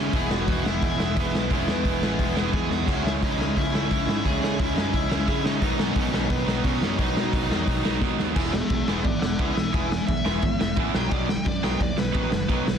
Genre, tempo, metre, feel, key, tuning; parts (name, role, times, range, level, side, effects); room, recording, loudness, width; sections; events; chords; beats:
punk rock; 175 BPM; 4/4; straight; E major; A4 = 443 Hz
bluesy overdriven lead guitar; melody; 0.0-12.8 s; B3 to G#5; -31 LUFS; left 1 dB; distortion, tape echo
crunchy overdriven guitar; riff; 0.0-12.8 s; B2 to E4; -28 LUFS; right 16 dB
overdriven electric guitar; riff; 0.0-12.8 s; B2 to E4; -30 LUFS; left 15 dB
modern bright picked electric bass; bass; 0.0-12.7 s; E1 to C#3; -30 LUFS; equal
raw garage drum kit; drums; 0.1-12.8 s; crash cymbal, hi-hat, kick drum, snare drum; -25 LUFS; left 1 dB
little or no reverb; dense, heavily limited modern master; -22 LUFS; side -8 dB against mid
0.0-8.4 A section; 8.4-12.8 B section
drum fill 2.5-2.9, 8.0-8.4; lead electric guitar solo 8.4-12.8
0.1 E; 2.9 C#m; 5.6 B; 8.4 E; 10.9 B
| 0.14 0.48 0.82 1.16 | 1.51 1.85 2.19 2.53 | 2.88 3.22 3.56 3.90 | 4.25 4.59 4.93 5.27 | 5.62 5.96 6.30 6.65 | 6.99 7.33 7.68 8.02 | 8.36 8.71 9.05 9.40 | 9.74 10.09 10.43 10.78 | 11.12 11.46 11.81 12.15 | 12.50